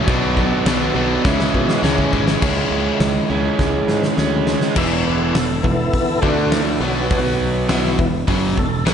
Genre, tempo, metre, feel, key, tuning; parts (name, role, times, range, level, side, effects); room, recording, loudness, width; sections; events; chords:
classic rock; 102 BPM; 4/4; straight; A4 = 444 Hz
fingerpicked twelve-string acoustic guitar; accompaniment; 0.0-2.4 s; B2 to G#4; -28 LUFS; right 1 dB
tonewheel organ; sustained chords; 0.0-8.9 s; D3 to E5; -25 LUFS; left 1 dB; overdrive, chorus vibrato, slow rotary speaker
crunchy overdriven guitar; riff; 0.0-8.9 s; E2 to E4; -22 LUFS; left 8 dB
overdriven electric guitar; riff; 0.0-8.9 s; E2 to D4; -21 LUFS; right 7 dB
modern bright picked electric bass; bass; 0.1-8.9 s; E1 to B2; -23 LUFS; equal
big rock drum kit; drums; 0.1-8.9 s; crash cymbal, hi-hat, kick drum, snare drum; -21 LUFS; left 1 dB
moderate lush hall reverb, RT60 1.7 s, small room ambience; big arena sound, nothing above 10.6 kHz; -15 LUFS; side -8 dB against mid
0.0-2.4 A section; 2.4-4.8 B section; 4.8-8.9 C section
drum fill 1.2-2.4, 3.6-4.8; tonewheel organ solo 4.8-8.9
0.1 Bm; 1.2 C#m; 4.8 E5; 6.2 D5; 6.8 B5; 7.7 E5